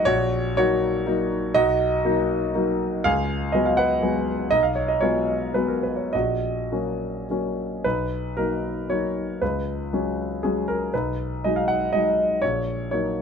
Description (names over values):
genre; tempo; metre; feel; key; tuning
neoclassical minimalist piano; 101-125 BPM; 3/4; rubato; Eb minor; A4 = 444 Hz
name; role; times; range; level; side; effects
warm concert grand piano; solo; 0.0-13.2 s; Bb1 to Gb5; -21 LUFS; equal; none
room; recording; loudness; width
little or no reverb; close, detailed microphones; -21 LUFS; side -6 dB against mid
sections
0.0-7.8 A section; 7.8-13.2 B section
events
none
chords
0.1 Ebm7/Bb; 1.5 Bmaj7; 3.0 Db7sus4; 4.5 Abm7/Cb; 6.1 Ebm7/Bb; 7.8 Bmaj7; 9.4 Db7sus4; 10.9 Abm7/Cb; 12.4 Ebm7/Bb